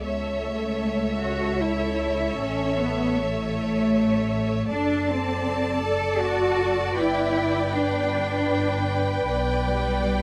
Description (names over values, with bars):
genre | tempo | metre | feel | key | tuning
classical, slow romantic movement for string orchestra | 78 BPM | 3/4 | rubato | A major, G major from 4.7 s | A4 = 440 Hz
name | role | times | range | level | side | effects
rich symphonic violin section | melody | 0.0-10.2 s | E5 to A5 | -34 LUFS | equal | none
rich symphonic violin section | second line | 0.0-10.2 s | C#5 to D5 | -32 LUFS | equal | none
rich symphonic viola section | accompaniment | 0.0-10.2 s | A4 to B4 | -34 LUFS | equal | none
rich studio cello section | bass | 0.0-10.2 s | G3 to A4 | -28 LUFS | equal | none
rich symphonic double bass section | bass | 0.0-10.2 s | F#1 to C#2 | -32 LUFS | equal | none
room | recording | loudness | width
little or no reverb | close, detailed microphones | -24 LUFS | mono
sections
0.0-10.2 A section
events
none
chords
0.0 A/C#; 2.4 A; 4.7 D7/F#; 7.0 G; 9.3 G/B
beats
| 0.04 0.81 1.61 | 2.39 3.18 3.95 | 4.70 5.44 6.21 | 6.98 7.74 8.50 | 9.26 10.05